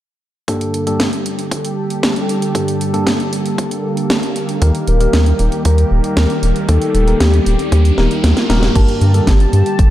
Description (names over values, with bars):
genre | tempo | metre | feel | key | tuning
italo disco | 116 BPM | 4/4 | straight | G minor | A4 = 440 Hz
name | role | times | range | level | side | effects
warm analog pad | sustained chords | 0.5-9.9 s | D3 to A5 | -20 LUFS | right 1 dB | chorus, vintage 12-bit sampler grit
tine electric piano | stabs | 0.5-9.3 s | G2 to A5 | -22 LUFS | left 1 dB | low-pass filter
electronic kick drum | drums | 0.5-9.9 s | none | -17 LUFS | equal | high-pass filter on kick, high-pass filter on room
house drum kit | drums | 0.5-9.9 s | crash cymbal, hi-hat, snare drum | -20 LUFS | equal | none
round analog bass | bass | 4.6-9.9 s | Eb1 to G2 | -13 LUFS | equal | none
riser | sound effects | 6.1-8.8 s | none | -27 LUFS | right 1 dB | none
soft octave-layered synth lead | melody | 4.9-9.9 s | G4 to Bb4 | -21 LUFS | left 2 dB | chorus, tape echo
room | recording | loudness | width
light reverb | dark, warm production | -12 LUFS | side -13 dB against mid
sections
0.5-8.8 A section; 8.8-9.9 B section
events
riser 6.1-8.8; drum fill 8.0-8.8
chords
0.5 Gmadd9; 4.6 Eb; 8.8 Gmadd9